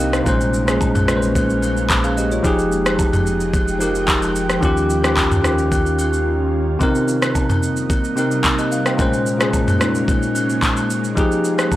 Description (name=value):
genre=amapiano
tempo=110 BPM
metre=4/4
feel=straight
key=F minor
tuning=A4 = 439 Hz
part: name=bell-like tine electric piano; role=accompaniment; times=0.0-11.8 s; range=Bb2 to G5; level=-19 LUFS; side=left 1 dB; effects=none
part: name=ethereal airy pad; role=sustained chords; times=0.0-11.8 s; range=C3 to G5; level=-27 LUFS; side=right 1 dB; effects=ensemble chorus, built-in reverb, sidechain pumping
part: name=warm sub bass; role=bass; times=0.0-6.8 s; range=F1 to Eb2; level=-24 LUFS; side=equal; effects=none
part: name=smooth R&B drum kit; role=drums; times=0.1-11.8 s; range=handclaps, kick drum, rim click, shaker, toms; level=-19 LUFS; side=equal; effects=none
part: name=agogo bells and woodblock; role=percussion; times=0.3-11.8 s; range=none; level=-27 LUFS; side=right 1 dB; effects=none
part: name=swell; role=sound effects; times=11.6-11.8 s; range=none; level=-39 LUFS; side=left 1 dB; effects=none
room=light reverb, digital ambience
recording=dry, gritty hardware recording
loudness=-15 LUFS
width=side -14 dB against mid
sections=0.0-11.8 A section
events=silent gap 6.3-6.8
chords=0.3 Bbm9; 2.4 Fm9; 4.6 Eb9; 6.8 Cm7; 9.0 Bbm9; 11.2 Fm9